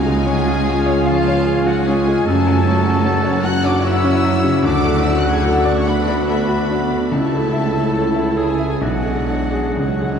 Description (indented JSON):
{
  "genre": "classical, romantic movement for piano and orchestra",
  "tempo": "60-77 BPM",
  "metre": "3/4",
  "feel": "rubato",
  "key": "F# minor",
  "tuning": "A4 = 440 Hz",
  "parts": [
    { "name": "bright baby grand piano", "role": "melody", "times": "0.0-10.2 s", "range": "B1 to F#5", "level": "-20 LUFS", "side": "left 1 dB", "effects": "none" },
    { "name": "warm studio violin section", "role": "melody", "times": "0.0-10.2 s", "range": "E#5 to G#6", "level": "-29 LUFS", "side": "left 4 dB", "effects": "none" },
    { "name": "bright oboe", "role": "second line", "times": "0.0-10.2 s", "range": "E#4 to G#5", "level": "-28 LUFS", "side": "equal", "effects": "none" },
    { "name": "concert flute", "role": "second line", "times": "0.0-10.2 s", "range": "E#5 to G#6", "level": "-29 LUFS", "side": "left 1 dB", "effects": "none" },
    { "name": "warm studio violin section", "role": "second line", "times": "0.0-10.2 s", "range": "C#5 to A5", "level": "-29 LUFS", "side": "left 3 dB", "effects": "none" },
    { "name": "warm studio viola section", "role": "accompaniment", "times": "0.0-10.2 s", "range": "C#4 to A4", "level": "-27 LUFS", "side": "right 1 dB", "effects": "none" },
    { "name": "mellow French horn section", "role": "sustained chords", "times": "0.0-10.2 s", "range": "F#3 to F#4", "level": "-22 LUFS", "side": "left 2 dB", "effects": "none" },
    { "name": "rich studio double bass section", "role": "bass", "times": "0.0-10.2 s", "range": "B1 to F#2", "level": "-22 LUFS", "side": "right 2 dB", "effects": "none" },
    { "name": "warm studio cello section", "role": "bass", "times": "0.0-10.2 s", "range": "E#3 to G#4", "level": "-26 LUFS", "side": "right 3 dB", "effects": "none" },
    { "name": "warm tuba", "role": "bass", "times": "0.0-10.2 s", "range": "F#1 to D2", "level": "-25 LUFS", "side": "right 2 dB", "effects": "none" }
  ],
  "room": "wet cathedral reverb, RT60 5.0 s",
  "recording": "dark, warm production",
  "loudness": "-14 LUFS",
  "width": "side -7 dB against mid",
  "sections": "0.0-10.2 A section",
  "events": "none",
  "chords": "0.0 C#; 2.3 F#m; 4.7 D; 7.1 A/C#; 8.8 G#m7b5/B",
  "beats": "0.67 1.47 | 2.27 3.06 3.85 | 4.66 5.47 6.31 | 7.13 7.96 8.84 | 9.79"
}